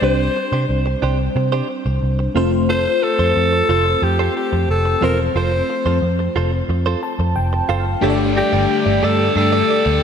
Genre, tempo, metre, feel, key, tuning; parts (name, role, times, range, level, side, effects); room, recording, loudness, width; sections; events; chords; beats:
pop; 90 BPM; 4/4; straight; A4 = 440 Hz
raspy alto saxophone; melody; 0.0-10.0 s; G4 to C5; -20 LUFS; left 1 dB; ping-pong delay
FM electric piano with soft pad layer; accompaniment; 0.0-10.0 s; F3 to A5; -21 LUFS; left 2 dB; chorus, phaser
direct-recorded clean electric guitar; riff; 0.0-9.9 s; D4 to D5; -26 LUFS; right 5 dB; wide subtle chorus, ping-pong delay
vintage muted picked electric bass; bass; 0.0-10.0 s; E1 to C3; -19 LUFS; right 1 dB
overdriven electric guitar; accompaniment; 8.0-10.0 s; G2 to G3; -25 LUFS; equal; analog chorus
funky polysynth comp; stabs; 8.0-10.0 s; D3 to G4; -25 LUFS; left 3 dB; chorus, ping-pong delay
marimba with hard mallets; second line; 8.4-10.0 s; G3 to A3; -26 LUFS; equal; ping-pong delay
wet lush hall reverb, RT60 3.2 s; dreamy mix soaked in reverb; -15 LUFS; side -7 dB against mid
0.0-8.0 A section; 8.0-10.0 B section
FM electric piano fill 6.7-8.0
0.0 Csus2; 2.4 F; 8.0 Gsus2
| 0.03 0.69 1.36 2.03 | 2.69 3.36 4.03 4.69 | 5.36 6.03 6.69 7.36 | 8.03 8.69 9.36 10.03